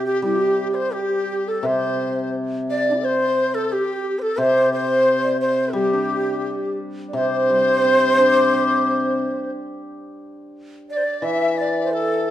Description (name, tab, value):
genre	chinese traditional, Chinese chamber ensemble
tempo	88 BPM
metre	2/4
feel	rubato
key	G zhi mode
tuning	A4 = 440 Hz
part	breathy bright xiao	melody	0.0-12.3 s	D4 to E5	-21 LUFS	equal	none
part	breathy mellow bass bansuri	second line	0.0-12.3 s	G4 to E5	-25 LUFS	right 5 dB	none
part	large dizi	second line	0.0-12.3 s	G4 to E5	-25 LUFS	left 5 dB	none
part	hammered dulcimer	accompaniment	0.0-12.3 s	C3 to G4	-24 LUFS	left 1 dB	none
room	moderate recital hall reverb, RT60 1.7 s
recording	dark, warm production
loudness	-18 LUFS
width	side -12 dB against mid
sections	0.0-7.1 A section; 7.1-12.3 B section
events	none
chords	none